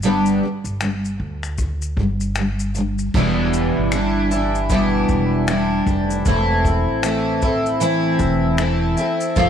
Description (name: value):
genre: acoustic pop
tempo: 77 BPM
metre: 4/4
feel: swing 60% on 16ths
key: A minor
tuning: A4 = 443 Hz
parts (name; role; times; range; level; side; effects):
- picked twelve-string acoustic guitar; accompaniment; 0.0-9.5 s; E2 to G4; -18 LUFS; equal; double-tracked left and right
- upright bass; bass; 0.0-9.5 s; E1 to D2; -24 LUFS; equal; none
- unplugged drum kit; drums; 0.0-9.5 s; crash cymbal, finger snaps, kick drum, shaker; -26 LUFS; left 1 dB; none
room: light reverb, studio ambience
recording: 1960s-style stereo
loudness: -17 LUFS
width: side -8 dB against mid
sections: 0.0-3.1 A section; 3.1-9.5 B section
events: none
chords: 0.0 G; 3.1 Em7; 6.3 Am/E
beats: | 0.03 0.81 1.59 2.37 | 3.15 3.93 4.71 5.48 | 6.26 7.04 7.82 8.59 | 9.37